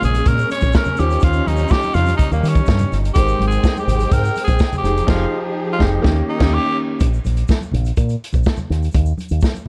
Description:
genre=disco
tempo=124 BPM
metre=4/4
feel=straight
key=unclear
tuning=A4 = 440 Hz
part: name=raspy tenor saxophone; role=melody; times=0.0-6.8 s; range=Bb3 to Db5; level=-24 LUFS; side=equal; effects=none
part: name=warm concert grand piano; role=accompaniment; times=0.0-7.0 s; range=Bb2 to C5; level=-26 LUFS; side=equal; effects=none
part: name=warm studio string section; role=sustained chords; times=0.0-7.0 s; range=Eb3 to G5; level=-30 LUFS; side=equal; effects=none
part: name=fingered electric bass with an envelope filter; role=bass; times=0.0-9.4 s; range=F1 to Eb3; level=-20 LUFS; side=equal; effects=none
part: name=vintage drum kit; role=drums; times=0.0-9.7 s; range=crash cymbal, hi-hat, kick drum, snare drum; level=-20 LUFS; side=equal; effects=none
part: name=congas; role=percussion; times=0.0-9.7 s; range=none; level=-31 LUFS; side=equal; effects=none
part: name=egg shaker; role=percussion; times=0.0-9.7 s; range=none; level=-48 LUFS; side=equal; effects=none
room=small room ambience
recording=dark, warm production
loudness=-17 LUFS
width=mono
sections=0.0-7.0 A section; 7.0-9.7 B section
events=tenor saxophone solo 0.0-7.0; band accent 5.1-7.0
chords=0.0 Bbm7; 1.0 Eb13; 3.2 Abmaj9; 4.8 Fm9; 6.0 Eb7; 7.0 N.C.

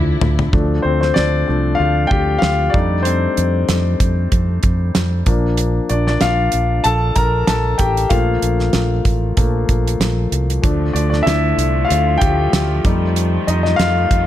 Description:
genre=piano-driven pop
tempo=95 BPM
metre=4/4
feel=swing 56% on 16ths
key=D minor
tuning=A4 = 440 Hz
part: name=clear concert grand piano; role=accompaniment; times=0.0-14.3 s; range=F3 to Bb5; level=-18 LUFS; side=left 3 dB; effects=none
part: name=rich chamber string section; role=sustained chords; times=0.0-0.5, 10.6-14.3 s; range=D3 to E4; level=-26 LUFS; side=right 3 dB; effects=none
part: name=fingered electric bass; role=bass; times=0.0-14.3 s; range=A1 to F2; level=-18 LUFS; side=right 1 dB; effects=none
part: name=damped 70s drum kit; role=drums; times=0.2-14.3 s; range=hi-hat, kick drum, snare drum, toms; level=-19 LUFS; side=right 1 dB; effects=none
room=light reverb, studio ambience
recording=none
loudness=-14 LUFS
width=side -12 dB against mid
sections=0.5-14.3 A section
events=drum fill 0.0-0.5; grand piano solo 0.5-14.3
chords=0.0 Dmadd9; 0.5 Dm; 2.7 F7; 5.3 Bb; 8.1 Fadd11; 10.6 Dm; 12.8 F7

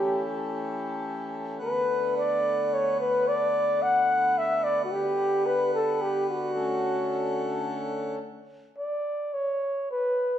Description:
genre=folk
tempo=109 BPM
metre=3/4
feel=straight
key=D major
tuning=A4 = 441 Hz
part: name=breathy flugelhorn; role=melody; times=0.0-10.4 s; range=F#4 to F#5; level=-24 LUFS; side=equal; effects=none
part: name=pedal harmonium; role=sustained chords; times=0.0-8.2 s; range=D3 to F#5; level=-32 LUFS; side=left 1 dB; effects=none
room=wet recital hall reverb, RT60 1.3 s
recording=recorded in a church or concert hall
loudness=-24 LUFS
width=side -10 dB against mid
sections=0.0-8.2 A section; 8.2-10.4 B section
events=none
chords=0.0 A7; 1.6 D6; 4.9 Gmaj7; 6.5 Dmaj7; 8.2 N.C.

